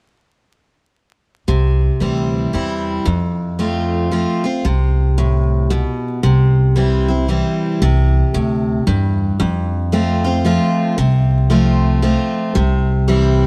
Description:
honky-tonk and classic country; 114 BPM; 3/4; swing 61% on 8ths; C major; A4 = 439 Hz
picked steel-string acoustic guitar; accompaniment; 1.5-13.5 s; F2 to F4; -19 LUFS; equal
upright bass; bass; 1.5-13.5 s; C2 to F2; -19 LUFS; equal
little or no reverb; vinyl crackle; -17 LUFS; mono
1.5-7.8 A section; 7.8-13.5 B section
1.5 C; 3.1 F; 6.2 C; 9.4 F; 12.6 C
| 1.48 2.01 2.54 | 3.07 3.60 4.12 | 4.65 5.18 5.71 | 6.24 6.76 7.29 | 7.82 8.34 8.87 | 9.40 9.92 10.45 | 10.98 11.50 12.03 | 12.55 13.08

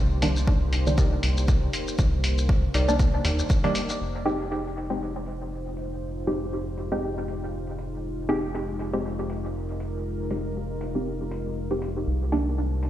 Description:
dub techno; 119 BPM; 4/4; swing 56% on 16ths; F minor; A4 = 439 Hz
deep dark ambient pad; sustained chords; 0.0-12.9 s; Ab3 to C5; -34 LUFS; left 1 dB; chorus, built-in reverb, sidechain pumping
round analog bass; bass; 0.0-12.9 s; F1 to Eb2; -28 LUFS; equal; sidechain pumping
filtered dub chord stab; stabs; 0.2-12.6 s; Eb3 to G4; -29 LUFS; equal; chorus, phaser, vintage 12-bit sampler grit, sidechain pumping, dub echo
electronic hi-hat and shaker; drums; 0.2-12.9 s; -34 LUFS; left 1 dB; low-pass filter on perc, low-pass filter on hats, low-pass filter on room
electronic kick drum; drums; 0.5-3.6 s; -23 LUFS; equal
warbly dusty pluck; riff; 1.0-3.4 s; Eb4 to D5; -36 LUFS; equal; chorus, cassette tape, sidechain pumping, dub echo
light reverb, digital ambience; played on a big sound system in a bare room, stone room reverb; -24 LUFS; side -12 dB against mid
0.0-4.0 A section; 4.0-12.9 B section
filter sweep on synth stab 0.0-4.0, 4.0-12.9
0.0 Cm7; 4.0 Fm7; 12.1 Cm7
0.47 0.98 1.48 | 1.99 2.49 3.00 3.50 | 4.00 4.51 5.01 5.52 | 6.02 6.53 7.03 7.53 | 8.04 8.54 9.05 9.55 | 10.05 10.56 11.06 11.57 | 12.07 12.57

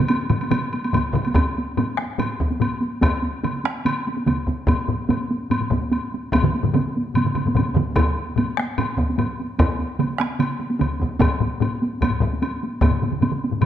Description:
japanese traditional, taiko drum ensemble; 146 BPM; 4/4; straight
taiko ensemble; percussion; 0.1-13.7 s; -24 LUFS; right 1 dB
woodblock; percussion; 0.1-13.7 s; -30 LUFS; left 1 dB
taiko ensemble; percussion; 0.3-13.7 s; -25 LUFS; left 4 dB
taiko ensemble; percussion; 0.3-13.7 s; -24 LUFS; right 5 dB
taiko ensemble; percussion; 0.9-12.9 s; -22 LUFS; equal
wet recital hall reverb, RT60 1.5 s; dark, warm production; -19 LUFS; side -10 dB against mid
0.0-1.4 A section; 1.4-13.7 B section
speeding up 0.0-13.7
0.10 0.52 0.94 | 1.36 1.77 2.19 2.61 | 3.03 3.44 3.86 4.27 | 4.68 5.10 5.51 5.92 | 6.33 6.74 7.15 7.56 | 7.97 8.38 8.79 9.19 | 9.60 10.00 10.40 10.81 | 11.21 11.61 12.02 12.42 | 12.82 13.21 13.61

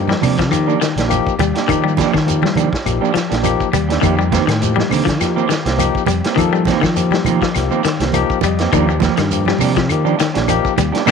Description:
afrobeat; 102 BPM; 4/4; swing 54% on 16ths; A4 = 439 Hz
barky tine electric piano; accompaniment; 0.0-11.1 s; F3 to G5; -22 LUFS; left 12 dB
fingered electric bass; bass; 0.0-11.1 s; Bb1 to F3; -19 LUFS; equal
electric guitar at the edge of break-up; arpeggios; 0.1-11.1 s; Eb3 to G3; -20 LUFS; left 11 dB
semi-hollow electric guitar; stabs; 0.1-11.1 s; Eb3 to G4; -20 LUFS; right 11 dB
vintage drum kit; drums; 0.1-11.1 s; hi-hat, kick drum, snare drum; -23 LUFS; right 1 dB
congas; percussion; 0.1-11.1 s; -23 LUFS; right 11 dB
shekere; percussion; 0.1-11.1 s; -28 LUFS; right 7 dB
claves; percussion; 0.2-11.1 s; -28 LUFS; left 14 dB
moderate spring reverb, RT60 2.6 s; 1960s-style stereo with parts hard left and right; -13 LUFS; side -6 dB against mid
0.0-11.1 A section
tine electric piano fill 7.8-8.7
0.0 Ebmaj9; 4.0 F9sus4; 8.7 Ebmaj9
0.52 1.10 | 1.69 2.27 2.86 3.44 | 4.03 4.62 5.20 5.79 | 6.38 6.96 7.55 8.14 | 8.73 9.32 9.90 10.49 | 11.08

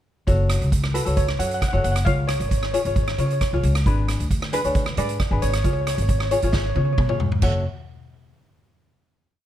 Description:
calypso; 134 BPM; 4/4; straight; F# harmonic minor; A4 = 440 Hz
tenor ukulele; accompaniment; 0.3-7.6 s; D4 to C#5; -26 LUFS; left 3 dB
upright bass; bass; 0.3-7.6 s; F#1 to C#3; -22 LUFS; equal
street-band drum kit; drums; 0.3-7.5 s; crash cymbal, hi-hat, kick drum, rim click, snare drum, toms; -24 LUFS; right 1 dB
steel pan; melody; 0.9-7.6 s; B4 to F#5; -28 LUFS; right 2 dB
little or no reverb; close, detailed microphones; -19 LUFS; side -11 dB against mid
0.3-7.4 verse; 7.4-9.2 final chord
drum fill 6.5-7.4
0.3 F#m; 2.1 C#; 3.9 G#dim; 5.6 C#; 7.4 F#m
| 0.28 0.72 1.17 1.62 | 2.06 2.51 2.96 3.41 | 3.86 4.30 4.75 5.20 | 5.64 6.09 6.53 6.98 | 7.42

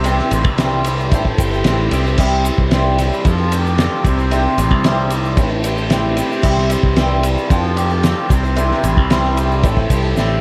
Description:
folk rock and heartland rock; 113 BPM; 4/4; straight; C major; A4 = 440 Hz
picked twelve-string acoustic guitar; accompaniment; 0.0-10.4 s; A2 to C5; -23 LUFS; equal
tonewheel organ; sustained chords; 0.0-10.4 s; G4 to C6; -35 LUFS; equal
raw garage guitar; riff; 0.0-10.4 s; A2 to G4; -24 LUFS; equal; overdrive, phaser
modern bright picked electric bass; bass; 0.0-10.4 s; G1 to F2; -20 LUFS; equal
cloth-damped thuddy drum kit; drums; 0.0-10.3 s; crash cymbal, kick drum, ride cymbal, snare drum; -20 LUFS; equal
egg shaker; percussion; 0.1-10.3 s; -39 LUFS; equal
light reverb, studio ambience; dark, warm production; -16 LUFS; mono
0.0-10.4 A section
drum fill 10.2
0.0 C; 1.1 Am7; 2.2 C; 3.2 Fadd9; 4.0 Am7; 6.4 C; 7.5 Fadd9; 8.3 C
| 0.05 0.59 1.12 1.65 | 2.18 2.72 3.25 3.78 | 4.31 4.85 5.38 5.91 | 6.44 6.97 7.51 8.04 | 8.57 9.10 9.63 10.17

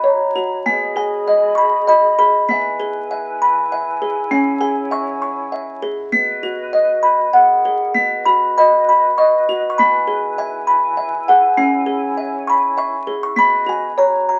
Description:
children's music, lullaby; 99 BPM; 3/4; rubato; B major; A4 = 440 Hz
music box; melody; 0.0-14.4 s; B3 to D#6; -17 LUFS; equal
mellow hollow flute section; sustained chords; 0.0-14.4 s; E4 to B5; -27 LUFS; equal
moderate studio reverb, RT60 0.6 s; very old 78 rpm record, vinyl crackle; -16 LUFS; mono
0.0-7.9 A section; 7.9-14.4 B section
0.0 F#; 0.7 G#m; 2.5 E; 4.3 C#m; 6.1 B; 7.3 F#add9; 7.9 B; 9.8 E; 11.6 C#m; 13.4 B
0.04 | 0.66 1.27 1.89 | 2.50 3.11 3.71 | 4.32 4.91 5.51 | 6.11 6.71 7.33 | 7.95 8.56 9.18 | 9.78 10.38 10.97 | 11.57 12.16 12.77 | 13.37 13.98

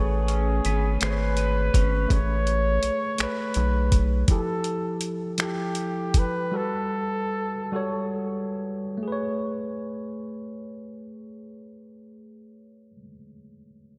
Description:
slow six-eight R&B; 44-55 BPM (dotted quarters); 6/8; straight; A major; A4 = 441 Hz
mellow flugelhorn; melody; 0.0-8.2 s; G4 to C#5; -32 LUFS; equal; analog delay
electric guitar at the edge of break-up; second line; 0.0-2.7 s; A3 to B4; -37 LUFS; equal; analog chorus, analog delay
tine electric piano; accompaniment; 0.0-14.0 s; F3 to C#5; -33 LUFS; equal; subtle chorus
rubbery square bass; bass; 0.0-4.2 s; G#1 to B1; -26 LUFS; equal
dusty soul sampler-style drum kit; drums; 0.3-6.3 s; finger snaps, hi-hat, kick drum; -26 LUFS; equal
moderate lush hall reverb, RT60 2.4 s; dreamy mix soaked in reverb; -26 LUFS; mono
0.0-9.0 A section; 9.0-14.0 B section
slowing down 4.3-9.0
0.0 Amaj9; 4.3 Fmaj9; 6.5 Gmaj9; 9.0 Amaj9
1.01 | 2.10 3.19 | 4.28 5.38 | 6.53 7.73 | 9.04 10.40 | 11.76 13.13

